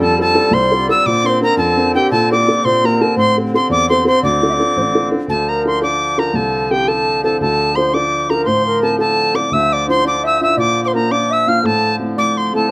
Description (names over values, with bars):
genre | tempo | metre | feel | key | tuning
celtic folk, Celtic jig | 113 BPM (dotted quarters) | 6/8 | straight | D minor | A4 = 436 Hz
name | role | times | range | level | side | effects
bright wooden whistle | melody | 0.0-12.7 s | G5 to F6 | -19 LUFS | equal | none
baroque flute | second line | 0.0-12.7 s | G4 to F5 | -22 LUFS | equal | none
dark upright piano | accompaniment | 0.0-12.7 s | A1 to Bb4 | -21 LUFS | equal | none
accordion | drone | 0.0-12.7 s | D3 to C4 | -27 LUFS | equal | none
room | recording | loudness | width
light reverb | none | -15 LUFS | mono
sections
0.0-5.3 A section; 5.3-12.7 B section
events
none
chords
0.0 F; 1.1 Bbadd9; 2.1 Gmadd9/Bb; 3.2 Am7; 4.2 Dm; 6.3 Am/C; 7.4 Dm; 8.5 Am; 9.5 Dmadd9; 10.6 Bb; 11.6 Am